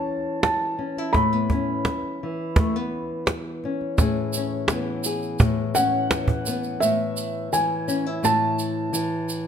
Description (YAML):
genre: acoustic folk duo or small band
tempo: 85 BPM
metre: 4/4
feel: straight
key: unclear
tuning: A4 = 439 Hz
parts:
  - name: felt-muted upright piano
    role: melody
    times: 0.0-9.5 s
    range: E5 to B5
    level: -25 LUFS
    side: right 1 dB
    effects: none
  - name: nylon-string guitar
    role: accompaniment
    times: 0.0-9.5 s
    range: A2 to G#4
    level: -25 LUFS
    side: left 2 dB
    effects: none
  - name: cajon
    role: percussion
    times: 0.4-6.6 s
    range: none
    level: -21 LUFS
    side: right 2 dB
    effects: none
  - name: tube shaker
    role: percussion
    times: 4.0-9.5 s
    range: none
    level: -31 LUFS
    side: right 6 dB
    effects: none
room: moderate large studio reverb, RT60 1.4 s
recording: close, detailed microphones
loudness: -21 LUFS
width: side -8 dB against mid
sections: 0.0-4.0 A section; 4.0-6.8 B section; 6.8-9.5 C section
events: none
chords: 0.0 A; 1.1 C#m7/A; 6.8 A